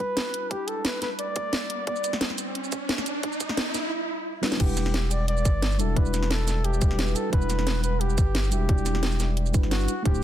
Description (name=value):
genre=liquid drum and bass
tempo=176 BPM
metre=4/4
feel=straight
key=E minor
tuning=A4 = 440 Hz
part: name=mellow flugelhorn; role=melody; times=0.0-2.2, 4.6-10.2 s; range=F#4 to D5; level=-31 LUFS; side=left 1 dB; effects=dub echo
part: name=mellow FM electric piano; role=accompaniment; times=0.0-10.2 s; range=G3 to F#5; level=-33 LUFS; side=equal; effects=chorus, phaser, low-pass filter
part: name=electronic kick drum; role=drums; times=0.0-10.1 s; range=none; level=-23 LUFS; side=equal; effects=high-pass filter on kick
part: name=garage drum kit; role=drums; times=0.0-10.2 s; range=crash cymbal, hi-hat, shaker, snare drum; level=-29 LUFS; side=equal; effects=none
part: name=riser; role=sound effects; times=0.5-3.9 s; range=none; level=-32 LUFS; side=right 2 dB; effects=none
part: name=saturated sub bass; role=bass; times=4.6-10.2 s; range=D1 to G1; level=-26 LUFS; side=equal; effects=none
room=light reverb, digital ambience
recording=dense, heavily limited modern master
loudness=-23 LUFS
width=side -12 dB against mid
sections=0.0-4.6 A section; 4.6-10.2 B section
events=build-up 0.0-4.6; filter sweep on FM electric piano 0.0-4.6; riser 0.5-3.9; drum fill 4.4; drop 4.6-10.2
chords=0.0 Em9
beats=0.17 | 0.51 0.85 1.19 1.53 | 1.87 2.21 2.56 2.90 | 3.24 3.58 3.92 4.26 | 4.60 4.94 5.28 5.62 | 5.96 6.30 6.64 6.99 | 7.33 7.67 8.01 8.35 | 8.69 9.03 9.37 9.71 | 10.05